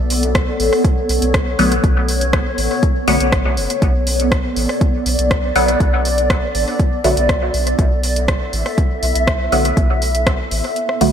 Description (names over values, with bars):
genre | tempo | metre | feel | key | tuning
dub techno | 121 BPM | 4/4 | straight | B minor | A4 = 439 Hz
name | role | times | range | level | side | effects
granular cloud pad | sustained chords | 0.0-11.1 s | B3 to E5 | -20 LUFS | equal | built-in reverb, sidechain pumping
soft dub sub bass | bass | 0.0-11.1 s | F#1 to B1 | -20 LUFS | equal | sidechain pumping
deep house drum kit | drums | 0.1-11.1 s | hi-hat, rim click | -22 LUFS | equal | overdrive, dub echo
electronic kick drum | drums | 0.3-10.4 s | none | -17 LUFS | equal | none
filtered dub chord stab | stabs | 1.6-11.1 s | D3 to B3 | -20 LUFS | left 1 dB | phaser, sidechain pumping, dub echo
room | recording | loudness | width
moderate lush hall reverb, RT60 2.0 s, digital ambience | dreamy mix soaked in reverb | -14 LUFS | side -8 dB against mid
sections
0.0-11.1 A section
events
kick drops out 10.8-11.1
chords
0.0 Bm7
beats
0.35 0.84 1.34 | 1.84 2.33 2.83 3.32 | 3.82 4.32 4.81 5.31 | 5.80 6.30 6.80 7.29 | 7.79 8.28 8.78 9.28 | 9.77 10.27 10.76